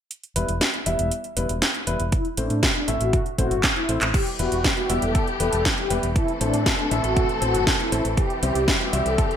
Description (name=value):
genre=italo disco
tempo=119 BPM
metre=4/4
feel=straight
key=E minor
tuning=A4 = 439 Hz
part: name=house drum kit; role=drums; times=0.1-9.4 s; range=crash cymbal, handclaps, hi-hat, snare drum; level=-24 LUFS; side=right 1 dB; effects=gated reverb
part: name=dark baby grand piano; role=stabs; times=0.4-9.1 s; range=A2 to E5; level=-28 LUFS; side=left 2 dB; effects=vintage 12-bit sampler grit, low-pass filter
part: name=fingered electric bass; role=bass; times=0.4-9.2 s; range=E1 to A2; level=-26 LUFS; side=equal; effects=none
part: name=mellow synth brass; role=melody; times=2.1-9.3 s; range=D4 to A4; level=-26 LUFS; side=left 1 dB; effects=chorus, cassette tape, ping-pong delay
part: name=electronic kick drum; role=drums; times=2.1-9.3 s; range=none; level=-24 LUFS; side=equal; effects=none
part: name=warm studio string section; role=sustained chords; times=4.1-9.4 s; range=E3 to A4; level=-28 LUFS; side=left 1 dB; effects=none
room=moderate plate reverb, RT60 1.0 s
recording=bright 1980s-style digital production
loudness=-20 LUFS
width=side -9 dB against mid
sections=0.1-4.1 A section; 4.1-9.4 B section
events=drum fill 3.6-4.1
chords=0.1 Em; 2.1 Am; 4.1 Em; 6.2 Am; 8.2 C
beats=| 0.11 0.61 1.11 1.62 | 2.12 2.63 3.13 3.64 | 4.14 4.64 5.15 5.65 | 6.16 6.66 7.17 7.67 | 8.17 8.68 9.18